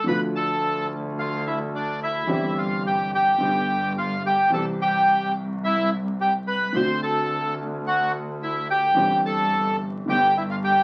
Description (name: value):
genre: tango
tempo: 108 BPM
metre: 4/4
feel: rubato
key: C major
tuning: A4 = 439 Hz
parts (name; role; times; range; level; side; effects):
- bandoneon; melody; 0.0-10.8 s; D4 to C6; -24 LUFS; equal; none
- dark upright piano; accompaniment; 0.0-10.8 s; G1 to G4; -31 LUFS; equal; none
- clear double bass; bass; 0.1-10.8 s; G1 to D2; -33 LUFS; equal; none
room: wet studio ambience, RT60 0.5 s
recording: very old 78 rpm record, vinyl crackle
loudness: -23 LUFS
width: mono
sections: 0.0-10.8 A section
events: none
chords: 0.1 Dm; 2.3 C/G; 3.4 G; 4.5 C; 6.7 D7; 9.0 C/G; 10.1 G